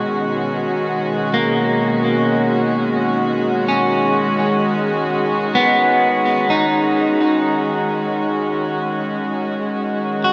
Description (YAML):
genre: ambient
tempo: 64 BPM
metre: 4/4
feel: straight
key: B major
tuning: A4 = 439 Hz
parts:
  - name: dark studio string section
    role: sustained chords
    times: 0.0-10.3 s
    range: D#3 to F#4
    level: -21 LUFS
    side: equal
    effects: none
  - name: bowed-like drone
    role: drone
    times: 0.0-3.8 s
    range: B2 to F#4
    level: -29 LUFS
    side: equal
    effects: built-in reverb
  - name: electric guitar at the edge of break-up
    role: arpeggios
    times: 1.3-10.3 s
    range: A#3 to F#4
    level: -20 LUFS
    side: equal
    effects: spring reverb, tape echo
room: wet echo chamber reverb, RT60 2.1 s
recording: echo-heavy mix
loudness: -18 LUFS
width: mono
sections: 0.0-3.7 A section; 3.7-10.3 B section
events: none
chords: 0.0 B